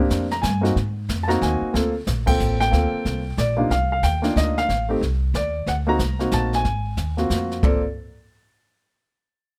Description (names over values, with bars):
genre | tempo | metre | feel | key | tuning
jazz piano trio | 183 BPM | 3/4 | swing 62% on 8ths | unclear | A4 = 439 Hz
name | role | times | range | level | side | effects
warm upright piano | melody | 0.0-7.8 s | C3 to Bb5 | -24 LUFS | equal | none
upright bass | bass | 0.0-7.8 s | G1 to Ab2 | -26 LUFS | equal | none
jazz brush drum kit | drums | 0.1-8.0 s | brushed snare drum, hi-hat, kick drum, ride cymbal, snare drum, toms | -28 LUFS | equal | none
room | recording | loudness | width
little or no reverb | none | -22 LUFS | mono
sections
0.0-3.7 A section; 3.7-7.6 B section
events
band accent 2.2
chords
0.0 Abmaj9#11; 0.8 Ab9; 1.7 Gm11; 3.7 Cm11; 4.7 Adim; 5.7 D7b9b13; 6.6 Ab13; 7.6 N.C.